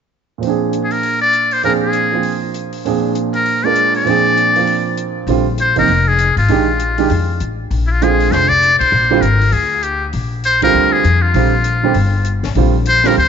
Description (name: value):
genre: modal jazz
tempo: 198 BPM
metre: 4/4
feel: swing 60% on 8ths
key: Bb mixolydian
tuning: A4 = 440 Hz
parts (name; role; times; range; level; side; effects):
- warm baby grand piano; accompaniment; 0.4-13.2 s; Bb2 to Bb4; -17 LUFS; right 7 dB; none
- compact cocktail drum kit; drums; 0.4-13.3 s; hi-hat, kick drum, ride cymbal, snare drum; -31 LUFS; left 10 dB; none
- trumpet with metal mute; melody; 0.8-13.3 s; E4 to D5; -14 LUFS; left 2 dB; none
- upright bass; bass; 5.3-13.3 s; F1 to F2; -16 LUFS; left 2 dB; none
room: moderate echo chamber reverb, RT60 2.2 s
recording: 1960s-style stereo with parts hard left and right, nothing above 7.7 kHz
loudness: -12 LUFS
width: side -7 dB against mid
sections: 0.4-5.3 A section; 5.3-13.3 B section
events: band accent 8.8, 10.6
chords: 0.4 Bb7; 10.1 Gm7/Bb